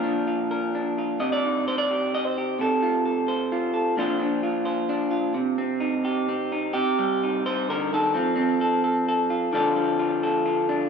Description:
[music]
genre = folk, solo fingerstyle acoustic guitar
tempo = 130 BPM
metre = 3/4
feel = straight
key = C dorian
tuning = A4 = 436 Hz
[part]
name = electric guitar through a small old amp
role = solo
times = 0.0-10.9 s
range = Bb2 to Eb5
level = -22 LUFS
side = equal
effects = none
[sound]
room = wet concert hall reverb, RT60 2.2 s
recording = recorded in a church or concert hall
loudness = -22 LUFS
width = side -6 dB against mid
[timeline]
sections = 0.0-6.8 A section; 6.8-10.9 B section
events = none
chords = 0.0 Bb; 1.2 Cm; 2.6 F/C; 4.0 Bbadd9; 5.3 Cm; 6.8 Cmadd9; 8.1 F; 9.5 Dm

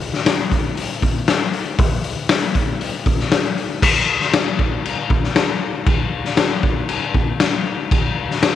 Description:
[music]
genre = rock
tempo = 118 BPM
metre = 4/4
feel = straight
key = none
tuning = none
[part]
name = raw garage drum kit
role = drums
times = 0.0-8.5 s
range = crash cymbal, hi-hat, kick drum, snare drum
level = -16 LUFS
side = left 2 dB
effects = none
[sound]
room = light reverb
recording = 1960s-style stereo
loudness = -16 LUFS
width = side -11 dB against mid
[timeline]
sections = 0.0-3.8 A section; 3.8-8.6 A section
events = none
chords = none

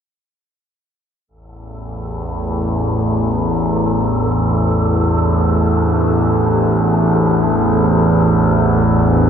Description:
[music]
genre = dark ambient drone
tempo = free time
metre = none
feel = none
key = unclear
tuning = A4 = 441 Hz
[part]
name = dark analog pad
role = sustained chords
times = 2.3-9.3 s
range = A3 to C5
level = -24 LUFS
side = equal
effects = chorus, phaser
[part]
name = overtone-sweeping drone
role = drone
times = 1.7-9.3 s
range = A1 to E2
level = -14 LUFS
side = equal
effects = chorus, built-in reverb
[part]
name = wind-like tuned noise texture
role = texture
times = 1.9-9.3 s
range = A4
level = -24 LUFS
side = right 2 dB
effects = built-in reverb
[sound]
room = wet cathedral reverb, RT60 5.4 s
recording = dark, warm production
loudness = -13 LUFS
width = side -8 dB against mid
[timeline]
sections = 1.3-9.3 A section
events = fade-in on analog synth pad 1.3-9.3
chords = 1.3 Am7

